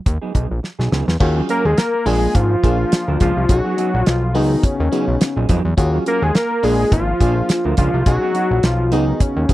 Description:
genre	early-eighties boogie funk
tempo	105 BPM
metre	4/4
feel	swing 56% on 16ths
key	Eb minor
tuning	A4 = 440 Hz
part	mellow electric guitar	riff	0.1-9.5 s	F3 to Bb4	-25 LUFS	right 5 dB	wide subtle chorus
part	fat analog bass	bass	0.1-9.5 s	Ab1 to F2	-18 LUFS	equal	none
part	damped 70s drum kit	drums	0.1-9.5 s	crash cymbal, hi-hat, kick drum, snare drum	-18 LUFS	equal	none
part	FM electric piano	accompaniment	1.2-9.5 s	Bb3 to Ab4	-23 LUFS	left 2 dB	chorus
part	fat analog lead	melody	1.5-9.5 s	Db4 to Bb4	-19 LUFS	left 1 dB	chorus, slapback echo
room	little or no reverb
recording	dry, close 1970s-style studio recording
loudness	-15 LUFS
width	side -16 dB against mid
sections	0.0-1.2 A section; 1.2-9.5 B section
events	drum fill 0.6-1.2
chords	0.0 Db9sus4; 1.2 Ebm11; 2.1 Bb7; 3.5 B6; 4.3 Db9sus4; 5.8 Ebm11; 6.6 Bb7; 8.1 B6; 8.9 Db9sus4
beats	0.06 0.63 | 1.21 1.78 2.35 2.92 | 3.49 4.06 4.63 5.21 | 5.78 6.35 6.92 7.49 | 8.06 8.63 9.21

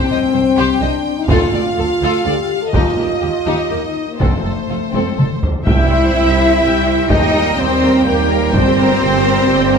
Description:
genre	cinematic, epic orchestral film score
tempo	125 BPM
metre	3/4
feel	straight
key	unclear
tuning	A4 = 443 Hz
part	clear symphonic violin section	melody	0.0-9.8 s	Bb4 to G5	-22 LUFS	left 4 dB	none
part	warm symphonic violin section	second line	0.0-9.8 s	C4 to E5	-22 LUFS	left 4 dB	none
part	clear symphonic viola section	accompaniment	0.0-9.8 s	G4 to Bb5	-24 LUFS	equal	none
part	mellow French horn section	sustained chords	0.0-9.8 s	A3 to A4	-19 LUFS	left 3 dB	none
part	rich symphonic cello section	bass	0.1-9.8 s	C2 to E4	-19 LUFS	right 3 dB	none
part	rich symphonic double bass section	bass	0.1-9.8 s	F1 to Eb2	-21 LUFS	right 3 dB	none
part	taiko ensemble	drums	1.3-9.0 s	none	-18 LUFS	equal	none
part	clear trombone section	sustained chords	5.7-9.8 s	Bb2 to G3	-23 LUFS	right 4 dB	none
part	rich chamber string section	sustained chords	5.7-9.8 s	G3 to G5	-23 LUFS	right 1 dB	none
room	moderate concert hall reverb, RT60 2.3 s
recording	none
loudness	-12 LUFS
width	side -6 dB against mid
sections	0.0-5.7 A section; 5.7-9.8 B section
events	drum fill 4.9-5.7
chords	0.0 C5; 1.3 Dm; 2.7 Eb; 4.2 F; 5.7 C; 7.1 Eb; 8.5 Gm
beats	0.35 0.82 | 1.30 1.79 2.27 | 2.74 3.23 3.71 | 4.20 4.69 5.18 | 5.67 6.15 6.62 | 7.10 7.58 8.06 | 8.54 9.01 9.49

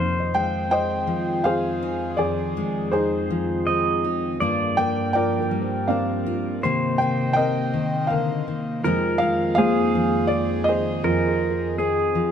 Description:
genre	acoustic folk-pop ballad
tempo	81 BPM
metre	3/4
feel	straight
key	unclear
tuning	A4 = 438 Hz
part	pedal steel guitar	second line	0.0-12.3 s	Ab4 to Eb5	-27 LUFS	right 1 dB	none
part	fingerpicked steel-string acoustic guitar	accompaniment	0.0-12.3 s	F2 to F4	-26 LUFS	left 2 dB	none
part	airy breathy pad	sustained chords	0.0-12.3 s	F2 to Eb5	-31 LUFS	right 2 dB	chorus
part	felt-muted upright piano	arpeggios	0.0-12.3 s	F3 to F5	-27 LUFS	right 4 dB	none
part	felt-muted upright piano	melody	0.3-12.3 s	Eb4 to G5	-24 LUFS	left 1 dB	none
room	light reverb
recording	dark, warm production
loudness	-20 LUFS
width	side -8 dB against mid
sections	0.0-12.3 A section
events	none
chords	0.0 Fm7; 4.4 Gm7; 6.6 Cm7; 8.8 Fm7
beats	0.70 1.44 | 2.18 2.92 3.66 | 4.40 5.15 5.89 | 6.63 7.37 8.10 | 8.84 9.57 10.31 | 11.04 11.78

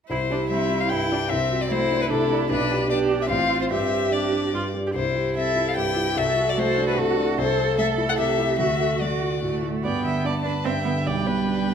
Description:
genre	quick classical-period movement for piano quartet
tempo	148 BPM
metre	3/4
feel	straight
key	C major, G major from 7.4 s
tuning	A4 = 440 Hz
part	rich violin	melody	0.1-11.7 s	A4 to A5	-25 LUFS	left 6 dB	none
part	rich cello	second line	0.1-11.7 s	G3 to A4	-27 LUFS	right 7 dB	none
part	rich viola	accompaniment	0.1-11.7 s	C4 to E5	-29 LUFS	right 5 dB	none
part	warm concert grand piano	accompaniment	0.1-11.7 s	A1 to A4	-25 LUFS	left 1 dB	none
room	wet recital hall reverb, RT60 1.6 s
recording	none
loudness	-20 LUFS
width	side -7 dB against mid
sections	0.1-9.8 A section; 9.8-11.7 B section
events	none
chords	0.1 C; 1.3 D7/C; 2.5 G/B; 3.3 F/A; 3.7 Gsus4; 4.5 G5; 5.0 C; 6.2 D7/C; 7.4 Am/C; 8.6 D; 9.8 G; 11.1 G/B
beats	| 0.10 0.50 0.91 | 1.31 1.71 2.11 | 2.50 2.90 3.30 | 3.71 4.12 4.54 | 4.95 5.36 5.77 | 6.17 6.57 6.97 | 7.37 7.77 8.18 | 8.59 9.01 9.42 | 9.84 10.24 10.65 | 11.05 11.46

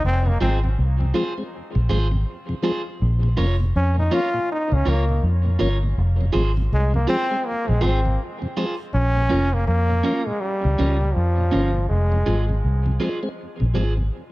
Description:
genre	reggae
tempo	81 BPM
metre	4/4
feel	swing 61% on 16ths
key	Bb dorian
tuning	A4 = 440 Hz
part	brilliant trombone	melody	0.0-12.6 s	F3 to F4	-25 LUFS	equal	dub echo
part	vintage muted fingered electric bass	bass	0.0-14.1 s	F1 to F2	-19 LUFS	equal	none
part	mellow tonewheel organ	accompaniment	0.3-14.0 s	F2 to Db4	-29 LUFS	left 1 dB	slow rotary speaker, dub echo
part	electric guitar at the edge of break-up	accompaniment	0.4-13.9 s	Db4 to Db5	-28 LUFS	right 2 dB	harmonic tremolo, dub echo
room	light reverb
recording	none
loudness	-19 LUFS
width	side -19 dB against mid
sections	0.0-8.9 A section; 8.9-14.3 B section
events	trombone solo 0.0-8.9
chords	0.0 Fm; 3.0 Bbm; 6.0 Fm; 8.9 Bbm; 11.9 Fm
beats	| 0.04 0.78 1.52 2.26 | 3.00 3.74 4.48 5.22 | 5.96 6.70 7.44 8.19 | 8.93 9.67 10.41 11.15 | 11.89 12.63 13.37

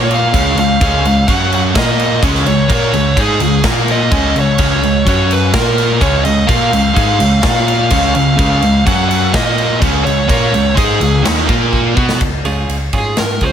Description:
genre	quiet-loud alternative rock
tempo	126 BPM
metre	4/4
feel	straight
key	Db mixolydian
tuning	A4 = 441 Hz
part	nasal lead guitar with a parked wah	melody	0.0-13.5 s	Ab4 to Gb5	-17 LUFS	equal	overdrive
part	fuzz guitar	riff	0.0-12.2 s	Db3 to Cb5	-17 LUFS	equal	distortion
part	high-gain distorted guitar	riff	0.0-12.2 s	Db3 to Cb5	-19 LUFS	equal	distortion
part	overdriven picked electric bass	bass	0.0-13.5 s	Db2 to Cb3	-18 LUFS	equal	none
part	huge arena drum kit	drums	0.1-13.5 s	crash cymbal, kick drum, ride cymbal, snare drum	-16 LUFS	right 1 dB	none
part	twelve-string electric guitar	arpeggios	12.5-13.5 s	Ab3 to Ab4	-20 LUFS	right 4 dB	spring reverb
room	light reverb, small room ambience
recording	none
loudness	-10 LUFS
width	side -9 dB against mid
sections	0.0-12.2 A section; 12.2-13.5 B section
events	drum fill 11.7-12.2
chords	0.3 Db; 1.3 Gb5; 1.7 Bb5; 2.2 Db; 3.6 Bb5; 4.1 Db5; 5.1 Gb5; 5.5 Bb5; 6.0 Db; 7.4 Bb5; 7.9 Db; 8.9 Gb5; 9.3 Bb5; 9.8 Db; 11.5 Bb5; 12.0 Cb5; 12.2 Db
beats	0.33 | 0.80 1.27 1.75 2.22 | 2.69 3.17 3.64 4.11 | 4.59 5.06 5.54 6.01 | 6.49 6.96 7.44 7.91 | 8.39 8.87 9.34 9.82 | 10.30 10.77 11.25 11.73 | 12.21 12.69 13.18

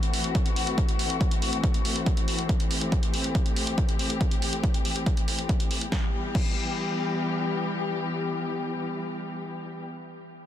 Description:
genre	uplifting trance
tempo	140 BPM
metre	4/4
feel	straight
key	E minor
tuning	A4 = 445 Hz
part	muted studio string section	sustained chords	0.0-9.8 s	E3 to G4	-29 LUFS	left 2 dB	sidechain pumping
part	punchy analog drum machine	drums	0.0-6.5 s	crash cymbal, hi-hat, snare drum	-33 LUFS	right 1 dB	sidechain pumping on hats, sidechain pumping on perc, sidechain pumping on cymbals
part	electronic kick drum	drums	0.3-6.5 s	none	-25 LUFS	equal	overdrive
room	digital ambience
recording	dense, heavily limited modern master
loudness	-24 LUFS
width	side -11 dB against mid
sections	0.0-5.9 A section; 5.9-9.3 B section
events	none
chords	0.0 F#m7b5; 2.5 Am7; 5.9 Em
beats	0.35 | 0.78 1.21 1.64 2.06 | 2.49 2.92 3.35 3.78 | 4.21 4.63 5.06 5.49 | 5.92 6.35 6.78 7.21 | 7.63 8.06 8.49 8.92

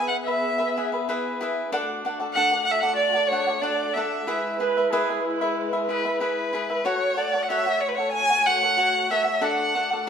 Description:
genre	mexican folk, mariachi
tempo	94 BPM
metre	4/4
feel	straight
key	unclear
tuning	A4 = 440 Hz
part	rich violin	melody	0.0-10.1 s	B4 to G#5	-22 LUFS	right 1 dB	none
part	cavaquinho	accompaniment	0.0-10.1 s	D4 to F#5	-27 LUFS	left 2 dB	none
part	muted studio violin section	sustained chords	0.0-10.1 s	G#3 to E5	-32 LUFS	left 1 dB	none
part	mellow trumpet	second line	4.6-5.7 s	E4 to B4	-25 LUFS	right 5 dB	none
room	wet stone room reverb, RT60 1.1 s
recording	band playing live in one room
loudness	-21 LUFS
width	side -7 dB against mid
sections	0.0-10.1 A section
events	none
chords	0.0 E; 1.7 D; 4.3 E; 6.9 F#m; 9.4 D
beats	0.44 1.07 | 1.71 2.35 2.98 3.62 | 4.27 4.91 5.56 6.21 | 6.85 7.50 8.14 8.79 | 9.43 10.06

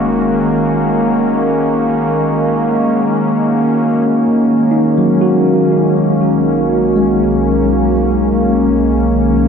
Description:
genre	ambient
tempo	free time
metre	none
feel	none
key	unclear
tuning	A4 = 439 Hz
part	warm analog pad	sustained chords	0.0-9.5 s	D#3 to F#4	-12 LUFS	equal	chorus
part	deep rumbling drone	bass	0.0-9.5 s	F#1 to B1	-23 LUFS	equal	built-in reverb, phaser
part	tine electric piano	arpeggios	4.7-9.5 s	F#3 to F#4	-15 LUFS	equal	fast stereo tremolo, tape echo
room	wet huge ambient reverb, RT60 8.2 s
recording	dark, warm production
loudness	-11 LUFS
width	side -6 dB against mid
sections	0.0-4.1 A section; 4.1-9.5 B section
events	none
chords	0.0 F#6; 4.1 Bmaj9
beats	free time

